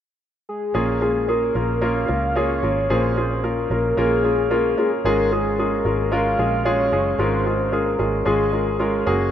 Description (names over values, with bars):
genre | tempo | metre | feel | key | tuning
pop | 112 BPM | 4/4 | straight | Db major | A4 = 440 Hz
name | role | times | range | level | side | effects
soft octave-layered synth lead | melody | 0.5-9.1 s | Ab4 to F5 | -23 LUFS | left 1 dB | chorus
clear baby grand piano | accompaniment | 0.7-9.3 s | Ab2 to Bb4 | -21 LUFS | equal | none
vintage muted fingered electric bass | bass | 0.7-9.3 s | Gb1 to Db2 | -26 LUFS | right 1 dB | none
room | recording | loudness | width
moderate lush hall reverb, RT60 2.7 s | rough home demo mix | -18 LUFS | side -10 dB against mid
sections
0.8-9.3 A section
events
none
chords
0.0 N.C.; 0.8 Bbm7; 5.0 Db